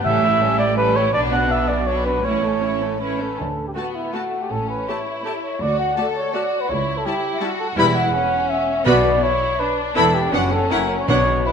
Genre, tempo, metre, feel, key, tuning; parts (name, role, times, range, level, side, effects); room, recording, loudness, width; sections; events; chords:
quick classical-period movement for symphony orchestra; 163 BPM; 3/4; rubato; D major, B minor from 7.8 s; A4 = 440 Hz
rich chamber violin section; melody; 0.0-11.3 s; F#4 to B5; -27 LUFS; left 6 dB
rich chamber violin section; second line; 0.0-11.5 s; A3 to A4; -26 LUFS; left 4 dB
rich symphonic viola section; accompaniment; 0.0-11.3 s; G3 to G4; -25 LUFS; right 1 dB
clear chamber double bass section; bass; 0.0-11.4 s; E1 to D2; -28 LUFS; right 2 dB
rich chamber cello section; bass; 0.0-11.4 s; C#2 to D3; -27 LUFS; right 3 dB
warm cor anglais; second line; 0.1-3.0 s; B4 to F#5; -19 LUFS; right 2 dB
timpani; percussion; 0.1-0.6, 8.9-11.5 s; A2 to B2; -26 LUFS; left 2 dB
dark trumpet; stabs; 3.0-11.5 s; E4 to F#5; -21 LUFS; equal
wet scoring stage reverb, RT60 1.6 s; -17 LUFS; side -6 dB against mid
0.0-3.4 A section; 3.4-11.5 B section
0.1 A7; 1.1 Bm; 2.2 A; 3.4 D; 4.5 A7; 5.6 D; 6.7 A7/C#; 7.8 Em; 8.9 Bm; 10.0 Em; 10.3 Bm/F#; 10.7 F#7